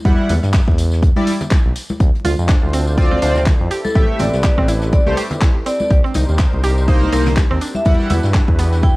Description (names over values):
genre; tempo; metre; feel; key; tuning
deep house; 123 BPM; 4/4; swing 56% on 16ths; unclear; A4 = 440 Hz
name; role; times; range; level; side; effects
chorused polysynth; stabs; 0.1-8.1 s; G3 to F#5; -21 LUFS; equal; sidechain pumping, tape echo
smooth synth bass; bass; 0.1-8.9 s; A1 to G2; -18 LUFS; equal; sidechain pumping
electronic kick drum; drums; 0.1-8.9 s; none; -14 LUFS; equal; none
soft brush drum kit; drums; 0.1-9.0 s; hi-hat, snare drum; -36 LUFS; left 2 dB; none
tambourine; percussion; 0.1-8.9 s; none; -36 LUFS; left 2 dB; none
house drum kit; drums; 0.3-8.7 s; handclaps, hi-hat; -27 LUFS; equal; none
congas; percussion; 0.3-8.6 s; none; -27 LUFS; left 1 dB; sidechain pumping on perc
warm analog pad; sustained chords; 2.0-9.0 s; C4 to C5; -28 LUFS; equal; chorus, sidechain pumping
mallet-like synth pluck; arpeggios; 2.2-8.9 s; B3 to G4; -25 LUFS; right 2 dB; chorus, vintage 12-bit sampler grit, sidechain pumping, tape echo
vibraphone with hard mallets; melody; 3.2-8.9 s; A4 to G5; -23 LUFS; left 1 dB; tape echo
room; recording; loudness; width
small room ambience; vinyl crackle; -13 LUFS; side -21 dB against mid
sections
0.0-9.0 A section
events
none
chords
0.0 Em7; 2.0 Dm7; 3.7 Am7; 5.9 Cm7; 7.6 Em7